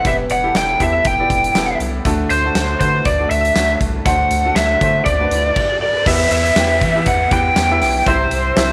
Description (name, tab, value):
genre	piano-driven pop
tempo	120 BPM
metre	4/4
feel	swing 56% on 16ths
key	E minor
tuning	A4 = 441 Hz
part	lead guitar through a small cranked amp	melody	0.0-8.7 s	C5 to G5	-18 LUFS	equal	overdrive
part	bright grand piano	accompaniment	0.0-8.7 s	C3 to G5	-24 LUFS	equal	none
part	huge arena drum kit	drums	0.0-8.7 s	crash cymbal, hi-hat, kick drum, snare drum	-23 LUFS	equal	none
part	round analog bass	bass	0.1-8.7 s	E1 to E3	-24 LUFS	equal	none
part	riser and downlifter	sound effects	5.1-8.7 s	none	-29 LUFS	equal	none
room	light reverb, studio reverb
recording	none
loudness	-16 LUFS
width	mono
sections	0.0-6.1 A section; 6.1-8.7 B section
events	riser 5.1-6.1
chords	0.1 Em; 2.1 D; 6.1 Em; 8.1 C